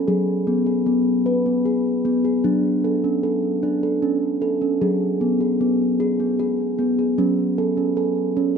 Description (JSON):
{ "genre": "world meditative, meditative tuned percussion", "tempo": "51 BPM (dotted quarters)", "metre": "6/8", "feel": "straight", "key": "F# minor", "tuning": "A4 = 440 Hz", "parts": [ { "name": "steel tongue drum", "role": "solo", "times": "0.0-8.6 s", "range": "F#3 to B4", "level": "-18 LUFS", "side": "equal", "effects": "ping-pong delay" } ], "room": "wet scoring stage reverb, RT60 1.7 s, small room ambience", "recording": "none", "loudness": "-18 LUFS", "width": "side -6 dB against mid", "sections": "0.0-7.2 A section; 7.2-8.6 B section", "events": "none", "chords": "0.1 F#sus24; 2.4 D/F#; 4.8 F#sus24; 7.2 F#m", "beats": "| 0.07 1.26 | 2.44 3.63 | 4.81 6.00 | 7.18 8.36" }